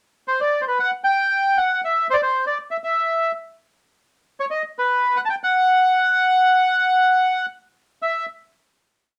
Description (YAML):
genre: tango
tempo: 117 BPM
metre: 4/4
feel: rubato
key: unclear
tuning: A4 = 440 Hz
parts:
  - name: bandoneon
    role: solo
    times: 0.3-8.3 s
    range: B4 to A5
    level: -19 LUFS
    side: equal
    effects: none
room: wet small room reverb, RT60 0.5 s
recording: none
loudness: -20 LUFS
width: mono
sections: 0.0-8.0 A section; 8.0-9.2 final note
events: none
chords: none